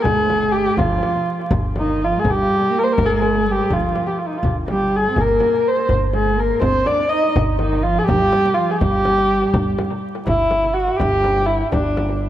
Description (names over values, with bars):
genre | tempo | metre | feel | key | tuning
Persian modal ensemble | 82 BPM (dotted quarters) | 6/8 | straight | G dastgah shur | A4 = 440 Hz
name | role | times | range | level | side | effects
warm kamancheh | melody | 0.0-12.2 s | D4 to Eb5 | -18 LUFS | equal | tape echo
dark cello | second line | 0.0-9.8 s | Eb3 to Eb4 | -23 LUFS | right 2 dB | tape echo
upright bass | bass | 0.0-12.3 s | G1 | -23 LUFS | equal | none
frame drum | percussion | 0.1-12.1 s | none | -25 LUFS | left 1 dB | tape echo
room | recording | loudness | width
light reverb | echo-heavy mix, vinyl crackle | -16 LUFS | side -12 dB against mid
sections
0.0-10.3 A section; 10.3-12.3 B section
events
none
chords
none